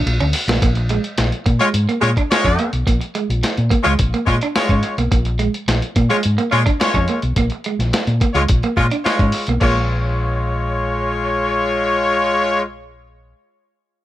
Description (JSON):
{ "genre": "funk", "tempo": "107 BPM", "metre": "4/4", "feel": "straight", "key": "unclear", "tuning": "A4 = 441 Hz", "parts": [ { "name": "clean electric guitar", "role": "riff", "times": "0.0-9.8 s", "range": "Ab3 to D4", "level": "-22 LUFS", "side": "right 4 dB", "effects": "none" }, { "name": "hollow-body short-scale fingered electric bass", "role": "bass", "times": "0.0-13.3 s", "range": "Bb1 to Bb2", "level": "-20 LUFS", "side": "equal", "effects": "none" }, { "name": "lo-fi sampler-style drum kit", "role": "drums", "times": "0.1-9.7 s", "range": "crash cymbal, hi-hat, kick drum, ride cymbal, snare drum", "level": "-20 LUFS", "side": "equal", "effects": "none" }, { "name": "warm horn section", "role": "second line", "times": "1.6-12.6 s", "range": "Ab3 to C#5", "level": "-18 LUFS", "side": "left 2 dB", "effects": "none" } ], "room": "light reverb", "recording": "none", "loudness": "-15 LUFS", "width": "side -14 dB against mid", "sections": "0.6-9.6 A section; 9.6-11.9 B section", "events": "drum fill 0.0-0.6", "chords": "0.0 Bb(#9); 0.6 Bbm7", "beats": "0.06 | 0.62 1.18 1.74 2.30 | 2.87 3.43 3.99 4.55 | 5.12 5.68 6.24 6.80 | 7.37 7.93 8.49 9.05 | 9.61 10.18 10.74 11.30" }